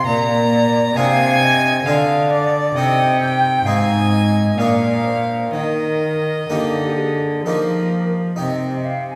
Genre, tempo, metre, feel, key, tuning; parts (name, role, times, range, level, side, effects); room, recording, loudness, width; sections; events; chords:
classical, baroque-style sonata movement with continuo; 62-67 BPM; 3/4; rubato; Eb major; A4 = 440 Hz
warm violin; melody; 0.0-7.9 s; D5 to Bb5; -24 LUFS; equal
mellow hollow silver concert flute; second line; 0.0-9.2 s; G4 to Ab5; -24 LUFS; equal
harpsichord; accompaniment; 0.0-9.2 s; Ab2 to Ab4; -25 LUFS; equal
warm cello; bass; 0.0-9.2 s; Ab2 to F3; -21 LUFS; equal
wet recital hall reverb, RT60 1.9 s; heard from further back in the room; -17 LUFS; mono
0.0-8.4 A section
0.1 Bb7; 2.8 Cm; 3.6 Ab; 4.6 Bb7; 5.5 Eb; 8.4 Cm